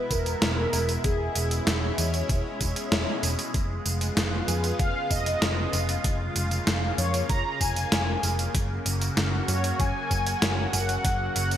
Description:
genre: synthwave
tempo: 96 BPM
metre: 4/4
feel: straight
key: F# major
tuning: A4 = 440 Hz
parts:
  - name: mellow synth brass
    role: melody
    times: 0.0-11.6 s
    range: G#4 to A#5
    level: -30 LUFS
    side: equal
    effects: chorus, digital delay
  - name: lush unison pad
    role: sustained chords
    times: 0.0-11.6 s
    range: B2 to F#4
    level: -31 LUFS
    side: equal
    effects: chorus, phaser, sidechain pumping
  - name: hollow-body short-scale picked electric bass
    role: bass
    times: 0.1-11.6 s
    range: E1 to F#2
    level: -28 LUFS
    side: equal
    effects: tube saturation
  - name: clean 12-bit digital drum machine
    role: drums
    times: 0.1-11.6 s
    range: hi-hat, snare drum, tambourine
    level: -28 LUFS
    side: equal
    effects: overdrive, gated reverb
  - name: electronic kick drum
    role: drums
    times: 0.1-11.2 s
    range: none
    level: -28 LUFS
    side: equal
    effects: overdrive
room: moderate lush hall reverb, RT60 2.0 s, digital ambience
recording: bright 1980s-style digital production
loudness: -23 LUFS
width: side -10 dB against mid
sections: 0.0-11.6 A section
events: none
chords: 0.0 E; 3.5 C#7/E#; 8.5 F#

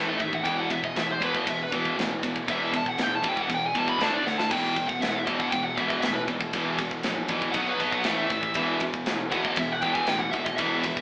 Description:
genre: heavy metal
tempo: 118 BPM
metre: 4/4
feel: straight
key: unclear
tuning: A4 = 440 Hz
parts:
  - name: distorted electric guitar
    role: riff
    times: 0.0-11.0 s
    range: E2 to D4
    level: -31 LUFS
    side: right 1 dB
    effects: overdrive
  - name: fuzz guitar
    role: riff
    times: 0.0-11.0 s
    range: E2 to D4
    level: -33 LUFS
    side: equal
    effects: distortion
  - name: scooped high-gain guitar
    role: riff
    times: 0.0-11.0 s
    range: E2 to D4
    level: -32 LUFS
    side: left 1 dB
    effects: distortion
  - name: fuzz fingered electric bass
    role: bass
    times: 0.0-10.9 s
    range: E1 to D#2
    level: -36 LUFS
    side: equal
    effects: overdrive
  - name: dark smooth lead guitar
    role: melody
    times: 0.1-11.0 s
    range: B4 to B5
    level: -28 LUFS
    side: equal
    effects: overdrive
  - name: tight metal drum kit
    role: drums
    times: 0.2-11.0 s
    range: crash cymbal, kick drum, ride cymbal, snare drum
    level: -30 LUFS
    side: equal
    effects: none
room: moderate studio ambience, RT60 0.5 s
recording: band playing live in one room, AM radio sound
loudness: -23 LUFS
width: side -25 dB against mid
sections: 0.0-11.0 A section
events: lead electric guitar solo 0.0-11.0; drum fill 4.3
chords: 0.5 E5; 4.0 D5; 4.5 E5; 7.5 B5; 8.1 A5; 8.6 E5

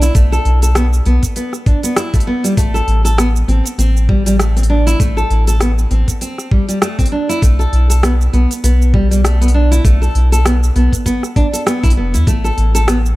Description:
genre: organic downtempo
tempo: 99 BPM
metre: 4/4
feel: swing 56% on 16ths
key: unclear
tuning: A4 = 440 Hz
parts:
  - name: nylon-string guitar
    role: arpeggios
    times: 0.0-13.0 s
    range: G3 to A4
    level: -18 LUFS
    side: equal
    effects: digital delay
  - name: round analog bass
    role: bass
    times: 0.0-13.1 s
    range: F1 to E2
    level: -12 LUFS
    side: equal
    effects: sidechain pumping
  - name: afro-pop drum kit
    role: drums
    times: 0.0-13.2 s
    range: cabasa, hi-hat, rim click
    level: -21 LUFS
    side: right 1 dB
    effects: none
  - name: electronic kick drum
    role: drums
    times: 0.2-12.4 s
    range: none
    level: -14 LUFS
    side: equal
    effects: none
room: little or no reverb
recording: none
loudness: -11 LUFS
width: side -18 dB against mid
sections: 0.0-13.2 A section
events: none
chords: 0.0 B7(no3); 2.6 Am; 7.4 B7(no3); 12.3 N.C.

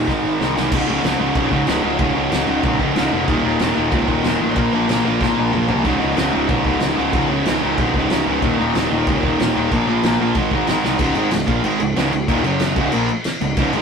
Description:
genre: punk rock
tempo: 187 BPM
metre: 4/4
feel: straight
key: Db major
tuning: A4 = 440 Hz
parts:
  - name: distorted electric guitar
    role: riff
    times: 0.0-13.8 s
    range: Db2 to Bb3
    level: -21 LUFS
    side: right 8 dB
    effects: overdrive
  - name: raw garage guitar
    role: riff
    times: 0.0-13.8 s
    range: Db2 to Bb3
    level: -19 LUFS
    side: left 4 dB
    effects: overdrive
  - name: fuzz picked electric bass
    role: bass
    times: 0.0-13.8 s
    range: Db1 to Db2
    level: -25 LUFS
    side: equal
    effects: overdrive
  - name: loose indie drum kit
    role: drums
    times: 0.1-13.8 s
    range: crash cymbal, kick drum, snare drum, toms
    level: -23 LUFS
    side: equal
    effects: none
room: light reverb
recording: rough rehearsal-room recording, tube saturation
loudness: -16 LUFS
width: side -6 dB against mid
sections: 0.7-11.0 A section; 11.0-13.8 B section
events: drum fill 0.1-0.7, 5.2-5.9, 10.8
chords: 0.1 Ab; 0.7 Db5; 3.3 Eb5; 4.6 Bb5; 5.9 Db5; 8.4 Eb5; 9.7 Bb5; 10.4 Ab; 11.0 Db; 12.4 Gb5; 12.8 Db

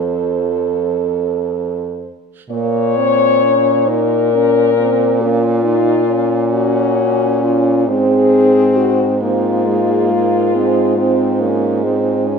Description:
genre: classical, lyrical piece for horn quartet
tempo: 39-47 BPM (dotted quarters)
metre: 12/8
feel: rubato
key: Bb minor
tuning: A4 = 440 Hz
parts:
  - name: mellow French horn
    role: melody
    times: 0.0-12.4 s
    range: F4 to Db5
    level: -16 LUFS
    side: left 6 dB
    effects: none
  - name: mellow French horn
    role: second line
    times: 0.0-12.4 s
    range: Ab3 to A4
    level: -19 LUFS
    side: right 10 dB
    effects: none
  - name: mellow French horn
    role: accompaniment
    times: 0.0-12.4 s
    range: F3 to Eb4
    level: -18 LUFS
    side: left 2 dB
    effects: none
  - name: warm French horn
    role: bass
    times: 0.0-12.4 s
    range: F2 to Bb2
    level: -19 LUFS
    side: right 2 dB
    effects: none
room: moderate recital hall reverb, RT60 1.4 s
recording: minimal, uncompressed stereo recording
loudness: -12 LUFS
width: side -5 dB against mid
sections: 0.0-2.5 A section; 2.5-12.4 B section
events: none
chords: 0.0 F; 2.5 Bbm; 7.9 Fm/Ab

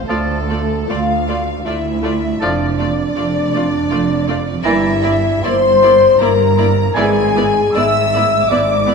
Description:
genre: classical, slow romantic movement for symphony orchestra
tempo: 78 BPM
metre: 3/4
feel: uneven beats, rubato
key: unclear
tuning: A4 = 440 Hz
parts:
  - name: large flute ensemble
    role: second line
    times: 0.0-8.9 s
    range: A4 to E6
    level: -23 LUFS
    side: left 2 dB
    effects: none
  - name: rich studio violin section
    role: second line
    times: 0.0-8.9 s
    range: A4 to E6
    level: -27 LUFS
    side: right 1 dB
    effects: none
  - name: dark French horn section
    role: sustained chords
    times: 0.0-8.9 s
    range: A3 to E5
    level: -15 LUFS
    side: left 3 dB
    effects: none
  - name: rich studio violin section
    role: melody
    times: 0.1-8.9 s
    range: D5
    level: -28 LUFS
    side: left 4 dB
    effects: none
  - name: bright clarinet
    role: second line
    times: 0.1-7.2 s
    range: D5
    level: -28 LUFS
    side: left 3 dB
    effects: none
  - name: warm oboe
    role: second line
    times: 0.1-7.2 s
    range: G#5 to Bb5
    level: -27 LUFS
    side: right 2 dB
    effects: none
  - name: clear bassoon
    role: accompaniment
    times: 0.1-7.3 s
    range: E3 to F3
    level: -26 LUFS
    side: right 3 dB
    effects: none
  - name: rich studio viola section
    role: accompaniment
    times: 0.1-8.9 s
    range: A3 to F4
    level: -25 LUFS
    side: right 3 dB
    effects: none
  - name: warm studio cello section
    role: bass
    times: 0.1-8.9 s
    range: D2 to G#2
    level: -21 LUFS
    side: right 5 dB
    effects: none
  - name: warm studio double bass section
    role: bass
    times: 0.1-8.9 s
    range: F1 to D2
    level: -23 LUFS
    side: right 6 dB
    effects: none
room: wet concert hall reverb, RT60 2.0 s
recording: minimal, uncompressed stereo recording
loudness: -12 LUFS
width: side -5 dB against mid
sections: 0.0-8.9 A section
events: none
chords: 0.1 Dm; 2.4 Dm/F; 4.7 Em7b5/G; 7.0 E7/G#

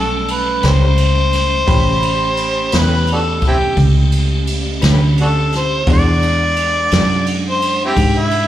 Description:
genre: slow blues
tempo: 57 BPM (dotted quarters)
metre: 12/8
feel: straight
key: A mixolydian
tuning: A4 = 440 Hz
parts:
  - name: mellow harmonica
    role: melody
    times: 0.0-8.5 s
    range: C4 to D5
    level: -17 LUFS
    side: equal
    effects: overdrive, slapback echo
  - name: bright upright piano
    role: accompaniment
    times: 0.0-8.5 s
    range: G3 to B5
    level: -29 LUFS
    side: right 4 dB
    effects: slapback echo
  - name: tonewheel organ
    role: sustained chords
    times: 0.0-8.5 s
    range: G3 to F#5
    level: -24 LUFS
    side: right 1 dB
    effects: slow rotary speaker, chorus vibrato
  - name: fingered electric bass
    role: bass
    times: 0.0-8.5 s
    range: A1 to G#2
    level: -16 LUFS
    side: equal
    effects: none
  - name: jazz brush drum kit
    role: drums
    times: 0.3-8.5 s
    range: kick drum, ride cymbal, snare drum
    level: -20 LUFS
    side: equal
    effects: none
  - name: electric guitar through a small old amp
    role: accompaniment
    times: 0.6-7.1 s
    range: E3 to B4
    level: -26 LUFS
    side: left 5 dB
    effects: tremolo, slapback echo
room: small room ambience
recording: live gig heard through the venue's PA, club reverb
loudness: -12 LUFS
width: side -12 dB against mid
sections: 0.0-8.5 A section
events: harmonica solo 0.0-8.5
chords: 0.0 A9; 5.9 E9

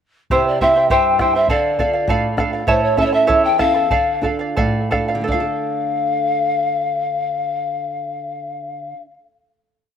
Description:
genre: andean folk, Andean ensemble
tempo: 81-101 BPM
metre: 2/4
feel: straight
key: D minor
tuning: A4 = 439 Hz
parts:
  - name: mellow hollow pan flute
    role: melody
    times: 0.3-9.0 s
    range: C5 to G5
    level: -18 LUFS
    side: left 2 dB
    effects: slapback echo
  - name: charango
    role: accompaniment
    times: 0.3-9.1 s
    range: E4 to A5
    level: -19 LUFS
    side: right 4 dB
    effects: slapback echo
  - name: flamenco guitar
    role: accompaniment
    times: 0.3-9.2 s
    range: E2 to A4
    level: -25 LUFS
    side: right 1 dB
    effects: none
  - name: bombo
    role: percussion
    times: 0.3-5.6 s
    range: none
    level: -24 LUFS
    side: equal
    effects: none
room: little or no reverb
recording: recorded outdoors, with no room sound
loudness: -15 LUFS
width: side -8 dB against mid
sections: 0.3-5.3 A section; 5.3-8.2 final chord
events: slowing down 2.7-5.3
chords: 0.3 C; 1.5 Dm; 2.7 A; 3.9 Dm

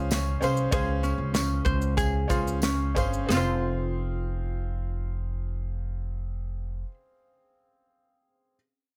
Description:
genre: acoustic pop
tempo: 88-100 BPM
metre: 4/4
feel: straight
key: F minor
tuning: A4 = 438 Hz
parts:
  - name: bright upright piano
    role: accompaniment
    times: 0.0-8.6 s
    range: C4 to F5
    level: -37 LUFS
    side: equal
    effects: none
  - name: ukulele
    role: accompaniment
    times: 0.0-6.9 s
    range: C4 to C5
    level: -32 LUFS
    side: equal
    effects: none
  - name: upright bass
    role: bass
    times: 0.0-6.8 s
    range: F1 to Db2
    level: -31 LUFS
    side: equal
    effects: none
  - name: modern studio drum kit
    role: drums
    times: 0.1-3.5 s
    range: kick drum, shaker, snare drum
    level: -31 LUFS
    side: equal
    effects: none
  - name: tambourine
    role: percussion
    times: 0.1-3.6 s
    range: none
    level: -44 LUFS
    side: equal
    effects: none
room: light reverb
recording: none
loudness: -28 LUFS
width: mono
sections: 0.0-3.3 A section; 3.3-6.0 B section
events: slowing down 0.0-3.3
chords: 0.0 Dbmaj7; 3.3 Fm

